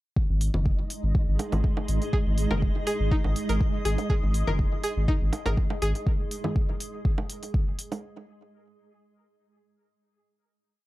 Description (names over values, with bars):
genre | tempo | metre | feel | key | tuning
minimal techno | 122 BPM | 4/4 | swing 53% on 16ths | unclear | A4 = 440 Hz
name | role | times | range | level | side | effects
electronic kick drum | drums | 0.2-7.6 s | none | -25 LUFS | equal | none
flickering grainy texture | texture | 0.5-6.1 s | D#4 to D#5 | -42 LUFS | equal | built-in reverb, sidechain pumping
granular cloud pad | texture | 0.8-6.1 s | G#3 to D#6 | -35 LUFS | right 2 dB | built-in reverb, sidechain pumping
saturated sub bass | bass | 0.3-5.9 s | F#1 to G#1 | -26 LUFS | equal | sidechain pumping
electronic hi-hat | drums | 0.4-8.0 s | none | -38 LUFS | equal | none
congas and bongos | percussion | 0.5-8.0 s | none | -33 LUFS | right 1 dB | digital delay
string-like resonator pluck | riff | 2.1-5.9 s | D#4 to A#4 | -32 LUFS | equal | chorus, sidechain pumping, dub echo
room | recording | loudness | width
light reverb | dark, warm production | -24 LUFS | side -17 dB against mid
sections
0.2-8.0 groove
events
none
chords
0.2 G#5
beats
| 0.17 0.66 1.15 1.64 | 2.13 2.62 3.12 3.61 | 4.10 4.59 5.08 5.57 | 6.07 6.56 7.05 7.54